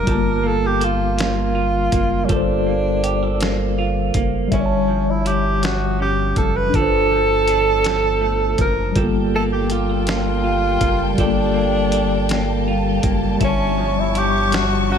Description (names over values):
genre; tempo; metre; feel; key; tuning
slow six-eight R&B; 54 BPM (dotted quarters); 6/8; straight; G minor; A4 = 440 Hz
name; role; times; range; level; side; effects
warm tenor saxophone; melody; 0.0-15.0 s; C#4 to B4; -20 LUFS; right 2 dB; none
semi-hollow electric guitar; second line; 0.0-15.0 s; G2 to A4; -26 LUFS; right 5 dB; tremolo, analog delay
mellow tine electric piano; accompaniment; 0.0-15.0 s; G3 to A5; -23 LUFS; left 3 dB; medium stereo tremolo
rubbery square bass; bass; 0.0-15.0 s; F#1 to G1; -23 LUFS; equal; none
dusty soul sampler-style drum kit; drums; 0.1-14.7 s; hi-hat, kick drum, snare drum; -24 LUFS; equal; none
warm studio string section; sustained chords; 9.0-15.0 s; G3 to C#6; -26 LUFS; left 2 dB; none
room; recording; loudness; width
moderate plate reverb, RT60 2.5 s; dreamy mix soaked in reverb; -16 LUFS; side -7 dB against mid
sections
0.1-15.0 A section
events
none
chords
0.1 Gm9; 4.5 A7b13/G; 6.7 Dm7/G; 9.0 Gm9; 13.4 A7b13/G